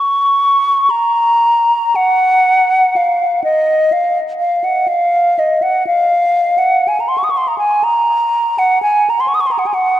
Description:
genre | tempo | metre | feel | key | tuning
classical, free, expressive piece for unaccompanied flute | 57-64 BPM | 3/4 | rubato | Bb minor | A4 = 440 Hz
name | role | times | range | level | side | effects
hollow concert flute | solo | 0.0-10.0 s | Eb5 to Eb6 | -11 LUFS | equal | none
room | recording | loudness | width
wet church reverb, RT60 3.7 s | dark, warm production | -11 LUFS | side -12 dB against mid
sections
0.0-10.0 A section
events
none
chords
none

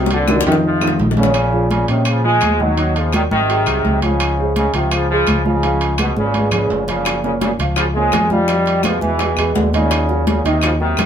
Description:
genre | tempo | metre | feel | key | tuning
latin, salsa | 168 BPM | 4/4 | straight | Bb minor | A4 = 441 Hz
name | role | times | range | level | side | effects
bright trombone section | melody | 0.0-11.1 s | Ab2 to Ab3 | -18 LUFS | equal | none
warm upright piano | accompaniment | 0.0-11.1 s | C3 to F5 | -21 LUFS | right 1 dB | none
fingered electric bass | bass | 0.0-11.1 s | Gb1 to Bb2 | -20 LUFS | left 1 dB | none
bongos | percussion | 0.1-1.3, 7.1-11.1 s | none | -24 LUFS | left 4 dB | none
congas | percussion | 0.1-11.1 s | none | -23 LUFS | equal | none
timbales | percussion | 0.1-11.1 s | none | -25 LUFS | right 4 dB | none
claves | percussion | 0.3-11.1 s | none | -26 LUFS | left 2 dB | none
room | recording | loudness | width
wet small room reverb, RT60 0.6 s | band playing live in one room | -14 LUFS | side -8 dB against mid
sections
0.0-1.4 A section; 1.4-11.1 B section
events
drum fill 0.0-1.4, 6.2-7.1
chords
0.0 Cm9; 0.6 F5; 1.4 Bbm7; 2.8 Ebm7; 3.5 Ab7; 4.2 Dbmaj7; 5.6 Db7; 7.1 Gbmaj7; 8.5 Fm7b5; 9.2 E; 9.9 Ebm7

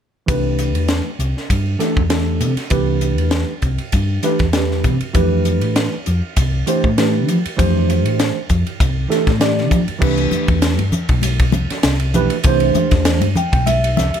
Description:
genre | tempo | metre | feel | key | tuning
electric jazz fusion | 99 BPM | 4/4 | swing 54% on 16ths | C major | A4 = 441 Hz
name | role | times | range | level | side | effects
tine electric piano | accompaniment | 0.3-14.2 s | E3 to G5 | -18 LUFS | right 3 dB | lush chorus
hollow-body short-scale fingered electric bass | bass | 0.3-14.2 s | B1 to F3 | -18 LUFS | left 1 dB | none
crisp fusion drum kit | drums | 0.3-14.2 s | crash cymbal, hi-hat, kick drum, ride cymbal, snare drum | -19 LUFS | equal | none
congas | percussion | 10.3-14.1 s | none | -22 LUFS | left 3 dB | none
room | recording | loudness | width
light reverb | none | -14 LUFS | side -8 dB against mid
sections
0.3-10.0 A section; 10.0-14.2 B section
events
tine electric piano fill 13.1-14.2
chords
0.3 Cmaj9; 5.1 Fmaj7; 10.0 Cmaj9

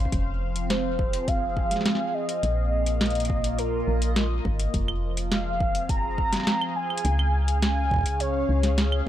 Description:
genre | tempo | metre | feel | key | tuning
IDM | 104 BPM | 4/4 | straight | F minor | A4 = 436 Hz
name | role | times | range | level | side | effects
phased analog pad | sustained chords | 0.0-9.1 s | Bb2 to F5 | -31 LUFS | left 1 dB | phaser, chorus, sidechain pumping
woody FM bass | bass | 0.0-9.1 s | F1 to Db2 | -26 LUFS | equal | none
booming analog drum machine | drums | 0.1-9.0 s | claves, hi-hat, snare drum | -28 LUFS | equal | none
electronic kick drum | drums | 0.1-9.1 s | none | -28 LUFS | equal | none
warm velvety synth lead | melody | 0.7-9.1 s | Bb4 to Bb5 | -28 LUFS | right 1 dB | chorus, analog delay
room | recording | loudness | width
little or no reverb | dry, gritty hardware recording | -22 LUFS | side -12 dB against mid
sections
0.0-9.1 A section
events
none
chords
0.1 Fm; 2.4 Bbsus4; 4.7 Fm; 7.0 Db

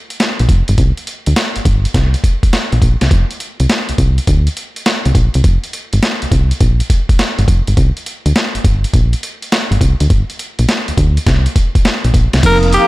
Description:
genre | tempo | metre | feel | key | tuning
R&B, new jack swing | 103 BPM | 4/4 | swing 66% on 16ths | G minor | A4 = 440 Hz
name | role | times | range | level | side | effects
boom bap sampler-style drum kit | drums | 0.1-12.9 s | crash cymbal, hi-hat, kick drum, snare drum, tambourine | -14 LUFS | equal | none
solid FM bass | bass | 0.4-12.8 s | F1 to D2 | -13 LUFS | equal | none
mellow tine electric piano | accompaniment | 12.4-12.9 s | F3 to Bb4 | -16 LUFS | right 5 dB | none
lush unison pad | sustained chords | 12.6-12.9 s | Bb4 to Eb6 | -16 LUFS | left 2 dB | chorus, phaser
raspy tenor saxophone | melody | 12.5-12.9 s | G4 to Bb4 | -12 LUFS | left 1 dB | none
room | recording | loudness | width
digital ambience | none | -11 LUFS | side -19 dB against mid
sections
0.0-12.4 A section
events
none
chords
0.0 Fsus4; 7.8 Gmadd11

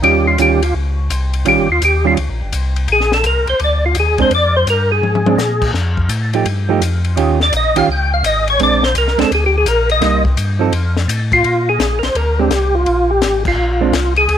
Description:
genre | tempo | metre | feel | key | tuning
soul jazz organ trio | 168 BPM | 4/4 | swing 65% on 8ths | Bb mixolydian | A4 = 442 Hz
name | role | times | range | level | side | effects
percussive tonewheel organ | melody | 0.0-14.4 s | F4 to G5 | -14 LUFS | left 1 dB | chorus vibrato, slow rotary speaker
hollow-body jazz guitar | accompaniment | 0.0-13.9 s | Eb3 to A4 | -18 LUFS | right 10 dB | none
tonewheel organ | bass | 0.0-14.4 s | G1 to Bb2 | -17 LUFS | left 1 dB | overdrive, chorus vibrato, slow rotary speaker
compact cocktail drum kit | drums | 0.0-14.4 s | crash cymbal, hi-hat, kick drum, ride cymbal, snare drum, toms | -23 LUFS | left 5 dB | none
room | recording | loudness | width
light reverb | 1960s-style stereo | -12 LUFS | side -9 dB against mid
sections
0.0-11.4 A section; 11.4-14.4 B section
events
tonewheel organ solo 0.0-11.4; drum fill 5.0-5.4; band accent 13.4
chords
0.0 Eb9; 2.9 Bb9; 5.7 F9; 7.2 Eb9; 8.6 Bb9; 10.0 Cm7; 10.7 F; 11.4 Bb9

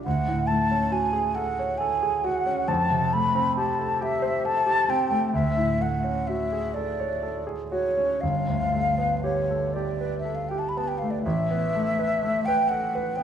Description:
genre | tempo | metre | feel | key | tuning
classical, impressionist duo for flute and grand piano | 39-46 BPM (dotted quarters) | 6/8 | rubato | unclear | A4 = 440 Hz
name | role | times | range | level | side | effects
clear concert grand piano | accompaniment | 0.0-13.2 s | G1 to C#5 | -26 LUFS | right 1 dB | none
mellow hollow concert flute | melody | 0.1-13.2 s | C#5 to B5 | -25 LUFS | equal | none
room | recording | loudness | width
wet scoring stage reverb, RT60 1.6 s | vinyl crackle | -22 LUFS | side -8 dB against mid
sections
0.0-11.2 A section; 11.2-13.2 B section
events
none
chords
0.1 Dmaj7#11; 2.7 Fadd9; 5.3 Dmaj7#11; 8.2 G9; 11.2 Asus2

